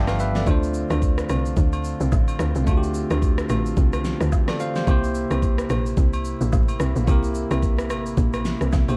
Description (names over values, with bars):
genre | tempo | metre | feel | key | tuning
amapiano | 109 BPM | 4/4 | swing 58% on 16ths | D minor | A4 = 441 Hz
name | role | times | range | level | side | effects
bell-like tine electric piano | accompaniment | 0.0-9.0 s | G3 to B5 | -30 LUFS | equal | none
pipe organ, foundations | sustained chords | 0.0-9.0 s | C3 to G4 | -34 LUFS | equal | none
smooth R&B drum kit | drums | 0.1-9.0 s | kick drum, rim click, shaker, snare drum | -25 LUFS | equal | none
agogo bells and woodblock | percussion | 0.1-9.0 s | none | -38 LUFS | equal | none
tight log drum bass | bass | 0.5-9.0 s | A1 to D2 | -26 LUFS | equal | none
room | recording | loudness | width
digital ambience | dark, warm production, vinyl crackle | -22 LUFS | mono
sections
0.0-9.0 A section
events
drum fill 8.7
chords
0.5 Dm7; 4.9 C7